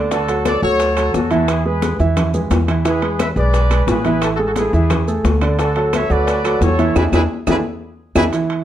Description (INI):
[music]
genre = latin, salsa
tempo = 175 BPM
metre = 4/4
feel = straight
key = unclear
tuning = A4 = 436 Hz
[part]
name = warm concert grand piano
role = accompaniment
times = 0.0-8.6 s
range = D3 to E5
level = -19 LUFS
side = right 3 dB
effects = none
[part]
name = upright bass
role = bass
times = 0.0-8.3 s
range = A1 to E2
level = -19 LUFS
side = equal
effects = none
[part]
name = mellow trumpet section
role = melody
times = 0.1-8.2 s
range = E4 to E5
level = -21 LUFS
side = equal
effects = none
[part]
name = bongos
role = percussion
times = 0.1-8.2 s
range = none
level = -26 LUFS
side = left 6 dB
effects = none
[part]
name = congas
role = percussion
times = 0.1-8.6 s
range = none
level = -24 LUFS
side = left 4 dB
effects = none
[part]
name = maracas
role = percussion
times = 0.1-8.5 s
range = none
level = -38 LUFS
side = right 6 dB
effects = none
[part]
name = timbales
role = percussion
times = 0.1-8.6 s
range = none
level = -26 LUFS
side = right 5 dB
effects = none
[part]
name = claves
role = percussion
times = 0.5-8.2 s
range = none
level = -33 LUFS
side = right 6 dB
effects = none
[sound]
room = moderate studio reverb, RT60 0.8 s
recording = none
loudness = -14 LUFS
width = side -11 dB against mid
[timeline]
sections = 0.0-8.3 A section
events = band accent 7.0-8.3; drum fill 7.3-8.3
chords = 0.1 Dmaj7; 1.5 E; 4.2 A5; 5.6 Dmaj7; 7.0 E7